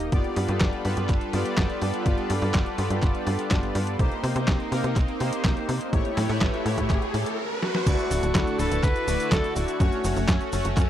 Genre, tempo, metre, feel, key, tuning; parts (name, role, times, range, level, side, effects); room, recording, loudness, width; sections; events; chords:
italo disco; 124 BPM; 4/4; straight; A4 = 440 Hz
lush unison pad; sustained chords; 0.0-10.9 s; D3 to C#5; -30 LUFS; equal; chorus
analog synth brass; stabs; 0.0-10.9 s; A3 to D5; -31 LUFS; left 1 dB; chorus, tape echo
tight sequencer bass; bass; 0.0-10.9 s; D1 to C3; -27 LUFS; equal
detuned 8-bit digital drum machine; drums; 0.0-10.9 s; cabasa, crash cymbal, handclaps, hi-hat, snare drum; -30 LUFS; equal; overdrive
electronic kick drum; drums; 0.1-10.9 s; -24 LUFS; equal; overdrive
riser; sound effects; 5.1-7.9 s; -33 LUFS; right 1 dB
breathy alto saxophone; melody; 7.6-10.2 s; Gb4 to B4; -29 LUFS; left 1 dB; tape echo
digital ambience; dry, close 1970s-style studio recording; -22 LUFS; side -11 dB against mid
0.0-7.9 A section; 7.9-10.9 B section
riser 5.1-7.9; drum fill 7.6
0.1 G7; 4.0 Cm7; 5.9 A7; 7.9 Dadd9; 9.8 F#m